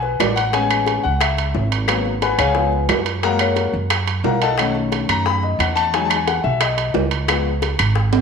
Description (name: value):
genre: Afro-Cuban jazz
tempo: 178 BPM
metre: 4/4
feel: straight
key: F# minor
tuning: A4 = 444 Hz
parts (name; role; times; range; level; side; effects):
- warm grand piano; accompaniment; 0.0-7.5 s; D#3 to B5; -20 LUFS; left 6 dB; none
- upright bass; bass; 0.0-8.2 s; G#1 to F#2; -22 LUFS; right 2 dB; none
- bongos; percussion; 0.0-8.2 s; none; -27 LUFS; left 8 dB; none
- claves; percussion; 0.2-8.0 s; none; -27 LUFS; left 8 dB; none
- timbales; percussion; 0.2-8.2 s; none; -22 LUFS; right 11 dB; none
room: wet echo chamber reverb, RT60 1.3 s, small room reverb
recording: 1960s-style stereo with parts hard left and right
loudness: -16 LUFS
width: side -6 dB against mid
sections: 0.0-8.2 A section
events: grand piano solo 0.0-8.2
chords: 0.0 E7(no3) (rootless); 0.5 Amaj7; 1.9 G#m7; 2.6 C#7; 3.2 F#maj7; 4.6 B7; 5.9 Emaj7; 7.3 C#7